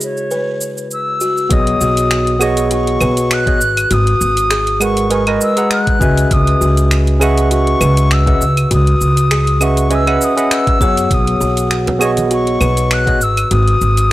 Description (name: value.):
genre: sunset chillout.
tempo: 100 BPM.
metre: 4/4.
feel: swing 55% on 16ths.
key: unclear.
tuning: A4 = 438 Hz.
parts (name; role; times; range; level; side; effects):
silver concert flute; melody; 0.0-14.1 s; C#5 to F#6; -18 LUFS; left 1 dB; analog delay.
bright tine electric piano; accompaniment; 0.0-13.2 s; C#3 to A#5; -18 LUFS; moving between left 4 dB and right 4 dB; auto-pan, analog delay.
smooth R&B drum kit; drums; 0.0-14.1 s; cabasa, claves, finger snaps, hi-hat; -20 LUFS; right 1 dB; none.
buzzing kalimba; arpeggios; 0.3-13.8 s; F#4 to C#5; -21 LUFS; left 2 dB; analog delay.
upright bass; bass; 1.5-14.1 s; G#1 to F#2; -15 LUFS; equal; none.
electronic kick drum; drums; 1.5-13.2 s; none; -15 LUFS; equal; none.
bongos and congas; percussion; 11.9-12.3 s; none; -23 LUFS; right 2 dB; none.
room: small room reverb.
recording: dry, gritty hardware recording, transformer saturation.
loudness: -11 LUFS.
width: side -16 dB against mid.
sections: 0.0-1.5 A section; 1.5-14.1 B section.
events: filter sweep on tine electric piano 0.0-1.5.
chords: 0.0 C#m11; 1.5 B69; 3.6 G#m7; 6.3 C#m11; 11.1 B69; 13.2 G#7(no3).